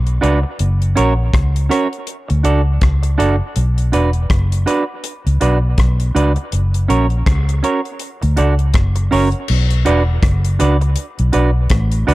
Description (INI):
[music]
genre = roots reggae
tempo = 81 BPM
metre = 4/4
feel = swing 59% on 16ths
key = B minor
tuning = A4 = 439 Hz
[part]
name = vintage muted fingered electric bass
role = bass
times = 0.0-12.1 s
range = E1 to D2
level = -14 LUFS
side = equal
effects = none
[part]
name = damped 70s drum kit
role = drums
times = 0.1-12.1 s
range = crash cymbal, hi-hat, kick drum, rim click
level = -19 LUFS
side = equal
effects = none
[part]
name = semi-hollow electric guitar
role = accompaniment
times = 0.2-12.1 s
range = C#4 to D5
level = -19 LUFS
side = right 3 dB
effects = tape echo
[sound]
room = small room ambience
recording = dark, warm production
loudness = -13 LUFS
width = side -18 dB against mid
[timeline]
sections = 0.0-9.5 A section; 9.5-12.1 B section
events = none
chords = 0.0 Bm; 0.6 F#; 2.1 D; 3.6 Bm; 6.5 F#; 8.0 D; 8.7 F#; 9.5 Bm